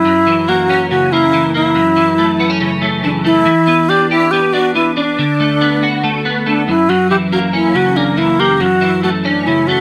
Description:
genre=indie pop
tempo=140 BPM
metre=4/4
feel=straight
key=unclear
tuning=A4 = 440 Hz
part: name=mellow hollow concert flute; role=melody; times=0.0-9.8 s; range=D4 to G4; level=-15 LUFS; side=equal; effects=none
part: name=twelve-string electric guitar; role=arpeggios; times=0.0-9.8 s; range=F#2 to G4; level=-17 LUFS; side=equal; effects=ensemble chorus
room=moderate club reverb, RT60 0.5 s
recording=none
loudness=-13 LUFS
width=mono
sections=0.0-9.8 A section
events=none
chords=0.0 F#7; 1.8 F#m7; 3.5 Em7; 5.2 Bm7/D; 6.7 F#7; 8.6 F#m7

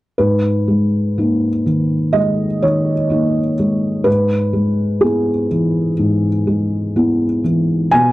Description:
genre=neoclassical minimalist piano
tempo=62 BPM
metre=4/4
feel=rubato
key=G# minor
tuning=A4 = 440 Hz
part: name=felt-muted upright piano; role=solo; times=0.2-8.1 s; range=G#2 to G#5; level=-14 LUFS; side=equal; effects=none
room=little or no reverb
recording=dry, close 1970s-style studio recording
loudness=-14 LUFS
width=side -18 dB against mid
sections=0.2-8.1 A section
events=none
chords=0.2 G#madd9; 4.1 E/G#

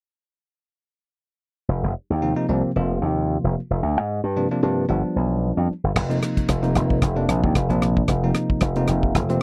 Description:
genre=electric jazz fusion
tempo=113 BPM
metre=4/4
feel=swing 56% on 16ths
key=unclear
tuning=A4 = 440 Hz
part: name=slap bass with an envelope filter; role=bass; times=1.7-9.4 s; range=F1 to Ab2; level=-24 LUFS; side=equal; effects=none
part: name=bell-like tine electric piano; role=accompaniment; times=2.2-9.4 s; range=C3 to F4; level=-26 LUFS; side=equal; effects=none
part: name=damped 70s drum kit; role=drums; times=6.0-9.4 s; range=crash cymbal, hi-hat, kick drum, rim click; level=-26 LUFS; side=equal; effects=none
room=little or no reverb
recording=dry, close 1970s-style studio recording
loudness=-22 LUFS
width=mono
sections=1.7-6.0 A section; 6.0-9.4 B section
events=none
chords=1.7 F5; 3.8 Dm7b5; 4.9 G7; 6.0 F7sus4

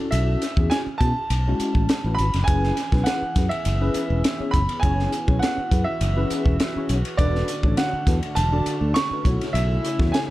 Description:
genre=electric jazz fusion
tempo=102 BPM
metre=4/4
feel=straight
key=F# minor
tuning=A4 = 440 Hz
part: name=tine electric piano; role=accompaniment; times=0.0-10.3 s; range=G#3 to D5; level=-28 LUFS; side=left 2 dB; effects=ensemble chorus, plate reverb
part: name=clear grand piano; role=melody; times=0.1-10.2 s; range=D5 to C#6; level=-27 LUFS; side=right 2 dB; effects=plate reverb, tape echo
part: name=fingered electric bass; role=bass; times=0.1-10.1 s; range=E1 to B2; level=-22 LUFS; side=equal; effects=none
part: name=crisp fusion drum kit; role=drums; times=0.1-10.3 s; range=hi-hat, kick drum, ride cymbal, snare drum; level=-24 LUFS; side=equal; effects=none
part: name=chorused pulse-width pad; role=sustained chords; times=2.5-10.3 s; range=C#3 to G#4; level=-32 LUFS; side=equal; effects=lush chorus
room=light reverb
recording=dark, warm production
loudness=-19 LUFS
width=side -16 dB against mid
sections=0.0-10.3 A section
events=none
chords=0.0 B9sus4; 2.5 F#9sus4; 7.2 E9sus4; 9.3 B9sus4

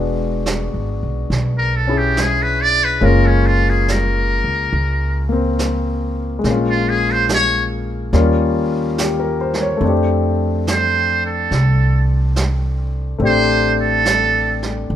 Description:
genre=jazz ballad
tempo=71 BPM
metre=4/4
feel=swing 66% on 8ths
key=unclear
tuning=A4 = 440 Hz
part: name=warm concert grand piano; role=accompaniment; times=0.0-15.0 s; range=G3 to Db5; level=-20 LUFS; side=left 4 dB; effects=none
part: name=upright bass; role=bass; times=0.0-15.0 s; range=E1 to F2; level=-19 LUFS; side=right 1 dB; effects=none
part: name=vintage brush drum kit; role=drums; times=0.5-15.0 s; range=brushed snare drum, hi-hat, snare drum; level=-25 LUFS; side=right 4 dB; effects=none
part: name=trumpet with metal mute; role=melody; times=1.6-14.6 s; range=Db4 to D5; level=-17 LUFS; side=right 2 dB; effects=none
room=light reverb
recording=minimal, uncompressed stereo recording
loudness=-15 LUFS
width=side -10 dB against mid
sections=0.0-15.0 A section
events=muted trumpet solo 0.0-15.0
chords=0.0 E9; 3.0 Gbmaj9; 6.4 Bbm7; 8.1 Eb9; 9.8 F69

